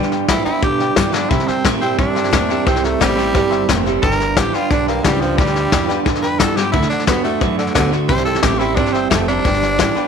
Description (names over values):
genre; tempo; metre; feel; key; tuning
rockabilly; 177 BPM; 4/4; straight; G mixolydian; A4 = 440 Hz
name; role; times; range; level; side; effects
bright upright piano; accompaniment; 0.0-10.1 s; A4 to Bb5; -26 LUFS; left 11 dB; none
picked steel-string acoustic guitar; accompaniment; 0.0-10.1 s; G2 to F#4; -26 LUFS; left 12 dB; none
electric guitar through a small old amp; riff; 0.0-10.1 s; G2 to B3; -20 LUFS; right 15 dB; tremolo
upright bass; bass; 0.0-10.0 s; F1 to C3; -24 LUFS; equal; none
soft brush drum kit; drums; 0.0-10.0 s; hi-hat, kick drum, snare drum; -19 LUFS; left 4 dB; none
raspy tenor saxophone; melody; 0.3-10.1 s; D3 to C5; -20 LUFS; equal; none
room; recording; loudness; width
light reverb, studio ambience; 1960s-style stereo with parts hard left and right; -14 LUFS; side -6 dB against mid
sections
0.0-10.1 A section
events
tenor saxophone solo 0.0-10.1; drum fill 1.1, 6.6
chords
0.0 G7; 1.3 C7; 4.0 G7; 6.7 D7; 8.1 C7; 9.5 G7